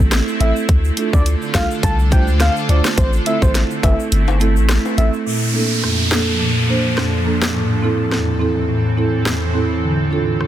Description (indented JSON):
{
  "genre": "dancehall",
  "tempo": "105 BPM",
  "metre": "4/4",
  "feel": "swing 56% on 16ths",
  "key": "A phrygian",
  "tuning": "A4 = 439 Hz",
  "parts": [
    { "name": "granular cloud pad", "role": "sustained chords", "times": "0.0-10.5 s", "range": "D2 to A4", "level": "-24 LUFS", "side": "equal", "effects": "built-in reverb, sidechain pumping" },
    { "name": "punchy sub bass", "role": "bass", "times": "0.0-5.1 s", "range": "G1 to D2", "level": "-16 LUFS", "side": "equal", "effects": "none" },
    { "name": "island pop drum kit", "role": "drums", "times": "0.1-10.5 s", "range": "hi-hat, kick drum, rim click, snare drum", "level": "-19 LUFS", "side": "equal", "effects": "soft clipping on snare" },
    { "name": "egg shaker and timbales", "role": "percussion", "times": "0.1-5.3 s", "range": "none", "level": "-31 LUFS", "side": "left 10 dB", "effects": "none" },
    { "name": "soft octave-layered synth lead", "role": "melody", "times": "0.4-5.1 s", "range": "C5 to A5", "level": "-24 LUFS", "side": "left 2 dB", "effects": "chorus, digital delay" },
    { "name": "marimba with medium mallets", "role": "accompaniment", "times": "0.4-10.5 s", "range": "E2 to C5", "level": "-19 LUFS", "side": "right 2 dB", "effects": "none" },
    { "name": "downlifter", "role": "sound effects", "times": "5.3-9.8 s", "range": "none", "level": "-24 LUFS", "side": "right 1 dB", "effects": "none" }
  ],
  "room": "light reverb",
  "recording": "dense, heavily limited modern master",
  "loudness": "-14 LUFS",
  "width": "side -12 dB against mid",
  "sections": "0.0-5.3 A section; 5.3-10.5 B section",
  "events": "kick muted 4.1-5.3",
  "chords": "0.0 Am; 0.7 Dm; 3.0 Am; 5.3 Bbmaj7; 7.5 Am; 9.8 Dm",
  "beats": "0.12 | 0.69 1.26 1.83 2.40 | 2.98 3.55 4.12 4.69 | 5.26 5.83 6.40 6.97 | 7.55 8.12 8.69 9.26 | 9.83 10.40"
}